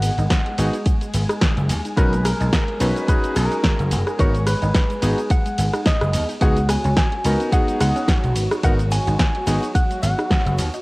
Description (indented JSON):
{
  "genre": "nu-disco, nu disco",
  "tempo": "108 BPM",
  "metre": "4/4",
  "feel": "swing 56% on 16ths",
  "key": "G# minor",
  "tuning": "A4 = 440 Hz",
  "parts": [
    { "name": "direct-recorded clean electric guitar", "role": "melody", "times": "0.0-10.5 s", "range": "A#4 to G#5", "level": "-26 LUFS", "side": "equal", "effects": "cassette tape, tape echo" },
    { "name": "warm chamber string section", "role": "sustained chords", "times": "0.0-10.8 s", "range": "F#3 to G#4", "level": "-31 LUFS", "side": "equal", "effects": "sidechain pumping, cassette tape" },
    { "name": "wide unison pluck", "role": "arpeggios", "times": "0.0-10.8 s", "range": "F#3 to D#4", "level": "-33 LUFS", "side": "right 2 dB", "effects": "none" },
    { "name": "vintage slap bass", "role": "bass", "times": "0.0-10.7 s", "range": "F#1 to D#2", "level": "-20 LUFS", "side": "equal", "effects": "none" },
    { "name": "house drum kit", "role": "drums", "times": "0.0-10.8 s", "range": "hi-hat, ride cymbal, rim click, shaker, snare drum", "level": "-25 LUFS", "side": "equal", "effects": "cassette tape" },
    { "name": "egg shaker", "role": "percussion", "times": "0.0-10.8 s", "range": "none", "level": "-48 LUFS", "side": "right 4 dB", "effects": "none" },
    { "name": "electronic kick drum", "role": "drums", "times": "0.3-10.4 s", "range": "none", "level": "-19 LUFS", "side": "equal", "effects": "cassette tape" },
    { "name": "bright electric grand piano", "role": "accompaniment", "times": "0.6-9.6 s", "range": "B3 to B4", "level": "-26 LUFS", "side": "equal", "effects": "cassette tape" }
  ],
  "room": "light reverb",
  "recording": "home recording on cassette",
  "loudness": "-17 LUFS",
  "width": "side -22 dB against mid",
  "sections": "0.0-10.8 A section",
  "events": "none",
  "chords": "0.0 G#m7; 2.0 Bmaj7; 4.2 G#m7; 6.4 C#7sus4; 8.4 G#m7"
}